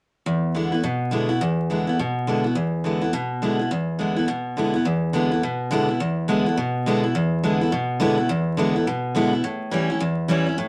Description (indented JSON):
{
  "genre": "rock",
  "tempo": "209 BPM",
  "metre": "4/4",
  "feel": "swing 61% on 8ths",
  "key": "E mixolydian",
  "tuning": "A4 = 440 Hz",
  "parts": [
    { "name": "picked steel-string acoustic guitar", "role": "solo", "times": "0.3-10.7 s", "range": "E2 to E4", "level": "-23 LUFS", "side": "equal", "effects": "none" }
  ],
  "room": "moderate club reverb, RT60 0.6 s",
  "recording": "vinyl crackle",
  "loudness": "-23 LUFS",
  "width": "mono",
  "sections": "0.3-4.9 A section; 4.9-10.7 B section",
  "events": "none",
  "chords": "0.3 E7; 9.4 A7"
}